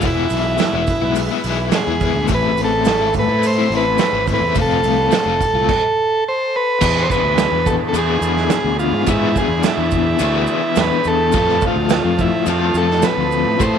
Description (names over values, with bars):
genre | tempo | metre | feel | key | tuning
psychedelic rock | 106 BPM | 4/4 | straight | E phrygian dominant | A4 = 440 Hz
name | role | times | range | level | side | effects
combo organ | melody | 0.0-13.8 s | E4 to C5 | -18 LUFS | right 1 dB | spring reverb, tape echo
clear studio string section | sustained chords | 0.0-13.8 s | C4 to C6 | -30 LUFS | right 13 dB | none
overdriven electric guitar | riff | 0.0-13.8 s | A2 to B4 | -21 LUFS | left 14 dB | tremolo
fuzz fingered electric bass | bass | 0.0-13.8 s | E1 to A2 | -22 LUFS | equal | overdrive
vintage drum kit | drums | 0.0-13.7 s | crash cymbal, hi-hat, kick drum, snare drum | -21 LUFS | right 5 dB | none
maracas | percussion | 0.0-13.7 s | none | -36 LUFS | right 16 dB | none
room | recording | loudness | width
light reverb, studio reverb | 1960s-style stereo with parts hard left and right | -14 LUFS | side -8 dB against mid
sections
0.0-6.8 A section; 6.8-13.8 B section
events
none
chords
0.0 E; 2.3 Amadd9; 4.6 F; 6.8 E7; 11.3 F